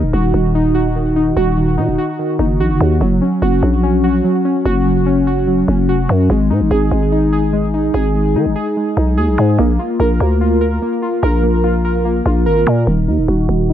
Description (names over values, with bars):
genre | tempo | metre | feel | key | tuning
hip hop, drill | 146 BPM | 4/4 | half-time | Eb minor | A4 = 442 Hz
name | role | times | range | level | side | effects
warbly lo-fi synth keys | arpeggios | 0.0-13.7 s | Eb3 to Bb4 | -15 LUFS | equal | chorus, low-pass filter, ping-pong delay
growling 808-style bass | bass | 0.0-13.7 s | Eb1 to Eb3 | -15 LUFS | equal | none
room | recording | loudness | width
little or no reverb | none | -12 LUFS | side -10 dB against mid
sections
0.0-12.9 A section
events
none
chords
0.0 Ebm; 3.0 Gb; 6.3 Ab5; 9.6 Bb; 12.9 Ebm